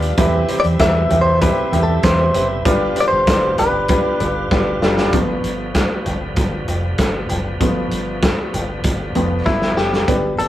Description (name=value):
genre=piano-driven pop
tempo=97 BPM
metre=4/4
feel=straight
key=G mixolydian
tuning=A4 = 442 Hz
part: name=clear concert grand piano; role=accompaniment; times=0.0-10.5 s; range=G2 to D5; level=-21 LUFS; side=equal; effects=none
part: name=bright tonewheel organ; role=sustained chords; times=0.0-10.0 s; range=B2 to F4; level=-28 LUFS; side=equal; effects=fast rotary speaker
part: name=vintage muted fingered electric bass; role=bass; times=0.0-10.5 s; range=F1 to E2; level=-22 LUFS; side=equal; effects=none
part: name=loose indie drum kit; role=drums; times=0.0-10.5 s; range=hi-hat, kick drum, snare drum, toms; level=-19 LUFS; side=equal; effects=none
part: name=direct-recorded clean electric guitar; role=melody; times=0.6-4.5, 9.5-10.5 s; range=E4 to E5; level=-18 LUFS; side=left 1 dB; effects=vibrato effect, tape echo
room=moderate small room reverb, RT60 0.5 s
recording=rough rehearsal-room recording, tube saturation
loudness=-15 LUFS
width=side -13 dB against mid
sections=0.0-5.1 A section; 5.1-10.1 B section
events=drum fill 4.5-5.1, 9.5-10.1; grand piano solo 5.1-10.1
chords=0.2 Cmaj7/E; 2.7 G7